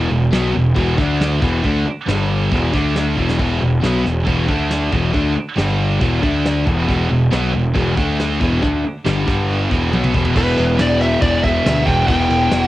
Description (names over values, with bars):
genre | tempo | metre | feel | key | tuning
hard rock | 138 BPM | 4/4 | straight | E minor | A4 = 440 Hz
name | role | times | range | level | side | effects
overdriven semi-hollow guitar | riff | 0.0-12.7 s | E2 to D4 | -22 LUFS | left 4 dB | cassette tape
scooped high-gain guitar | riff | 0.0-12.7 s | E2 to D4 | -23 LUFS | right 5 dB | distortion, cassette tape
sludgy distorted guitar | riff | 0.0-12.7 s | E2 to D4 | -22 LUFS | equal | overdrive, cassette tape
fuzz picked electric bass | bass | 0.0-12.7 s | E1 to D2 | -20 LUFS | equal | overdrive
soft brush drum kit | drums | 0.3-12.6 s | crash cymbal, hi-hat, kick drum, snare drum, toms | -22 LUFS | equal | cassette tape
smooth overdriven lead guitar | melody | 10.4-12.7 s | B4 to G5 | -18 LUFS | equal | cassette tape
room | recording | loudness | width
small room ambience | home recording on cassette | -14 LUFS | side -16 dB against mid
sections
0.0-10.4 A section; 10.4-12.7 B section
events
drum fill 3.2, 9.9-10.4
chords
0.0 E5; 1.0 D5; 1.4 E5; 2.1 G5; 2.5 E5; 2.7 D5; 3.2 E5; 4.5 D5; 4.9 E5; 5.6 G5; 6.0 E5; 6.2 D5; 6.7 E5; 8.0 D5; 8.4 Em; 9.3 G5; 9.7 E5; 10.4 Em